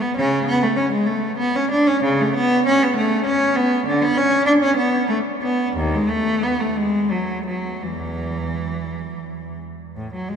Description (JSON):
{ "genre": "classical, baroque-style suite movement for unaccompanied cello", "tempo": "54-67 BPM (dotted quarters)", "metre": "6/8", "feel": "rubato", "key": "unclear", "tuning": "A4 = 439 Hz", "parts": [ { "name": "rich cello", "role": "solo", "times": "0.0-10.4 s", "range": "D#2 to D4", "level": "-18 LUFS", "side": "equal", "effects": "none" } ], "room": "wet cathedral reverb, RT60 5.6 s", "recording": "minimal, uncompressed stereo recording", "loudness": "-17 LUFS", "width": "side -7 dB against mid", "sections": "0.0-10.0 A section", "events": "none", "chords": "none", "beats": "| 0.17 1.07 | 2.04 2.96 | 3.87 4.78 | 5.76 6.76 | 7.81 8.89 | 9.96" }